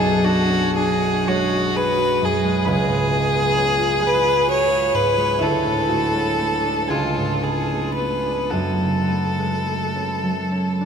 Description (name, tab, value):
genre	classical, romantic duo for violin and harp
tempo	34-45 BPM (dotted quarters)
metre	6/8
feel	rubato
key	unclear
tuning	A4 = 441 Hz
part	clear violin	melody	0.0-10.9 s	E#4 to C#5	-20 LUFS	equal	none
part	concert harp	accompaniment	0.0-10.9 s	B1 to C#6	-21 LUFS	right 1 dB	none
room	wet huge ambient reverb, RT60 7.6 s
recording	in a vast, echoing space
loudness	-17 LUFS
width	side -7 dB against mid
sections	0.0-10.9 A section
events	none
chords	0.0 G#m7b5/B; 2.7 C#7; 5.4 D; 6.9 C#5; 8.5 F#m